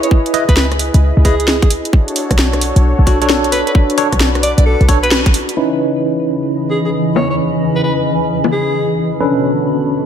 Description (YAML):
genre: UK garage, two-step garage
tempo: 132 BPM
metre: 4/4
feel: swing 65% on 16ths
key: C# minor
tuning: A4 = 440 Hz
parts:
  - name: breathy alto saxophone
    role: melody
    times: 0.0-9.0 s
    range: F#4 to D5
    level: -20 LUFS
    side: equal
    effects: ping-pong delay
  - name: warm analog pad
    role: sustained chords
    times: 0.0-10.1 s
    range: B2 to D#5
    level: -21 LUFS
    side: left 2 dB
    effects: chorus, sidechain pumping
  - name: barky tine electric piano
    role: stabs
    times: 0.0-10.1 s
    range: C#4 to D#5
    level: -18 LUFS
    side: right 1 dB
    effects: medium stereo tremolo, low-pass filter, ping-pong delay
  - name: garage drum kit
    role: drums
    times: 0.0-8.5 s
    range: bongos, crash cymbal, hi-hat, rim click, snare drum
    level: -17 LUFS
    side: left 1 dB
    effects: overdrive, low-pass filter on snare, low-pass filter on hats, low-pass filter on cymbals, low-pass filter on perc
  - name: electronic kick drum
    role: drums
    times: 0.1-5.3 s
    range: none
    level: -12 LUFS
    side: equal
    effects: overdrive
  - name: short 808-style bass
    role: bass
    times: 0.5-5.4 s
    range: B1 to C#2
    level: -13 LUFS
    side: equal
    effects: none
  - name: granular cloud pad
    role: texture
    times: 6.3-10.1 s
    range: D3 to B5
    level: -19 LUFS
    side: right 1 dB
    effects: built-in reverb, lush chorus, sidechain pumping
room: moderate lush hall reverb, RT60 1.6 s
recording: dreamy mix soaked in reverb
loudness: -11 LUFS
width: side -8 dB against mid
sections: 0.0-5.6 A section; 5.6-10.1 B section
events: filter sweep on tine electric piano 0.0-5.6; band accent 5.1; filter sweep on drum 5.6-10.1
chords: 0.0 C#m9; 1.9 Bm9; 5.6 C#m9; 9.2 Bm9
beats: | 0.11 0.57 1.02 1.48 | 1.93 2.39 2.84 3.29 | 3.75 4.20 4.66 5.11 | 5.57 6.02 6.48 6.93 | 7.39 7.84 8.29 8.75 | 9.20 9.66